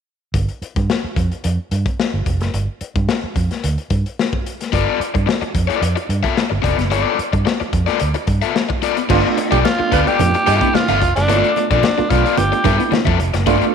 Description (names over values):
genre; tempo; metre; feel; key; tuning
funk; 110 BPM; 4/4; straight; G mixolydian; A4 = 444 Hz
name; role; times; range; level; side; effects
vintage muted fingered electric bass; bass; 0.3-13.6 s; F1 to G2; -19 LUFS; right 2 dB; none
crunchy breakbeat drum kit; drums; 0.3-13.7 s; crash cymbal, hi-hat, kick drum, snare drum; -21 LUFS; left 3 dB; none
overdriven electric guitar; accompaniment; 4.7-13.6 s; B3 to E5; -19 LUFS; left 9 dB; none
overdriven reed electric piano; stabs; 9.1-13.7 s; A3 to F4; -21 LUFS; right 11 dB; fast tremolo
congas; percussion; 9.1-13.6 s; none; -26 LUFS; right 10 dB; none
growling tenor saxophone; second line; 9.5-11.1 s; F4 to B4; -23 LUFS; right 12 dB; none
raspy tenor saxophone; melody; 9.6-12.9 s; D4 to G4; -19 LUFS; equal; none
room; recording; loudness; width
moderate echo chamber reverb, RT60 1.5 s, small room ambience; 1960s-style stereo with parts hard left and right; -15 LUFS; side -7 dB against mid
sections
0.3-9.1 A section; 9.1-13.7 B section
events
none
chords
0.3 G9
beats
| 0.34 0.89 1.44 1.98 | 2.53 3.08 3.63 4.17 | 4.72 5.27 5.82 6.37 | 6.91 7.46 8.01 8.55 | 9.10 9.65 10.19 10.74 | 11.29 11.83 12.38 12.92 | 13.47